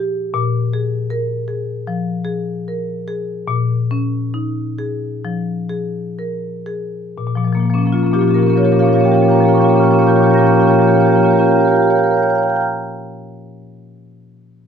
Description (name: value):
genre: classical, contemporary piece for solo marimba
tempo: 59-80 BPM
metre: 4/4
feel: straight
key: Bb dorian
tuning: A4 = 439 Hz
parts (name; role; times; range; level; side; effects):
- marimba with medium hard mallets; solo; 0.0-12.7 s; Bb2 to Bb6; -14 LUFS; equal; none
room: light reverb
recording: minimal, uncompressed stereo recording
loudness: -13 LUFS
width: side -7 dB against mid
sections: 0.0-7.2 A section; 7.2-11.2 B section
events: slowing down 0.0-7.2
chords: 0.3 Bb7(no3); 7.2 Bbm6